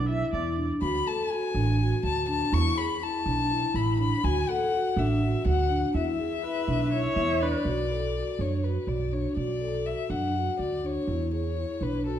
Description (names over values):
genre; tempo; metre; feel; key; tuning
contemporary instrumental, chamber music in an uneven meter; 246 BPM (eighths); 7/8; straight; B dorian; A4 = 440 Hz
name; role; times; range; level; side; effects
rich viola; second line; 0.0-0.7, 6.4-7.7 s; B4 to E5; -31 LUFS; right 2 dB; none
vibraphone with soft mallets; arpeggios; 0.0-12.2 s; D4 to A4; -29 LUFS; left 1 dB; none
upright bass; bass; 0.0-12.2 s; A1 to F#2; -29 LUFS; right 2 dB; none
rich violin; melody; 0.8-12.2 s; A4 to C#6; -31 LUFS; left 6 dB; none
room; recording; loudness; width
wet recital hall reverb, RT60 1.4 s; dark, warm production; -25 LUFS; side -10 dB against mid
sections
0.0-7.7 A section; 7.7-12.2 B section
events
none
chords
0.0 E7(no3); 0.8 D; 2.5 E7; 4.2 Dadd9; 5.9 E7(no3); 7.7 Bm; 11.1 E7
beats
0.09 0.33 0.57 | 0.82 1.06 1.31 1.55 1.80 2.04 2.28 | 2.53 2.77 3.02 3.26 3.50 3.75 3.99 | 4.24 4.48 4.73 4.97 5.21 5.46 5.70 | 5.95 6.19 6.43 6.68 6.92 7.17 7.41 | 7.66 7.90 8.15 8.39 8.63 8.88 9.12 | 9.37 9.61 9.86 10.10 10.35 10.59 10.84 | 11.08 11.32 11.57 11.81 12.06